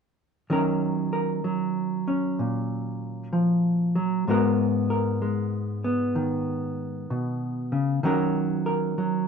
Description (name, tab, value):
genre	solo jazz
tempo	64 BPM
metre	4/4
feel	swing 66% on 8ths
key	Eb minor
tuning	A4 = 440 Hz
part	hollow-body jazz guitar	solo	0.5-9.3 s	Ab2 to Bb4	-23 LUFS	equal	none
room	light reverb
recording	dry, close 1970s-style studio recording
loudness	-23 LUFS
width	side -6 dB against mid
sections	0.5-9.3 A section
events	none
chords	0.5 Ebm7; 4.3 Abm9; 8.0 Ebm7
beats	| 0.50 1.44 2.38 3.33 | 4.27 5.21 6.15 7.10 | 8.04 8.98